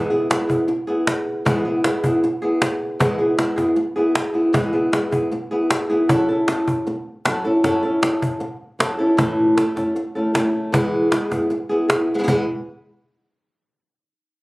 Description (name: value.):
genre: flamenco.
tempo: 155 BPM.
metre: 4/4.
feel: straight.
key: E major.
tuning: A4 = 441 Hz.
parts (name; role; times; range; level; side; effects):
flamenco guitar; melody; 0.0-12.4 s; A2 to A4; -18 LUFS; equal; none.
cajon; percussion; 0.3-12.4 s; none; -22 LUFS; equal; none.
room: moderate stone room reverb, RT60 1.0 s.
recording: recorded on a phone in the room, club reverb, compression.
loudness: -17 LUFS.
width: side -21 dB against mid.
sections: 0.0-12.3 A section; 12.3-13.8 B section.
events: none.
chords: 0.0 E; 6.1 F#m7; 9.2 A; 10.7 E; 12.3 N.C..